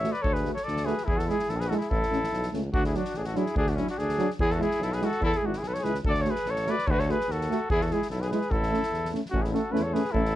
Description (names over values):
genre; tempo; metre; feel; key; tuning
balkan folk, Balkan brass band; 146 BPM; 2/4; straight; A major; A4 = 441 Hz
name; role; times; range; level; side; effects
warm flugelhorn; melody; 0.0-10.4 s; E4 to E5; -29 LUFS; equal; none
warm trumpet; second line; 0.0-10.4 s; C#4 to C#5; -34 LUFS; left 5 dB; none
mellow French horn; accompaniment; 0.0-10.2 s; C#4 to F#4; -34 LUFS; left 7 dB; none
warm trombone; accompaniment; 0.0-10.2 s; F#3 to A3; -31 LUFS; right 5 dB; none
warm tuba; bass; 0.0-10.4 s; G#1 to E2; -31 LUFS; equal; none
soft-mallet drum kit; percussion; 0.0-10.3 s; kick drum, snare drum; -32 LUFS; equal; none
room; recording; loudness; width
light reverb; dark, warm production; -25 LUFS; side -13 dB against mid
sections
0.0-2.7 A section; 2.7-9.3 A section; 9.3-10.4 B section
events
none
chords
0.0 D; 1.1 E; 1.9 A; 2.7 D; 4.4 E; 6.0 D; 7.7 E; 8.5 A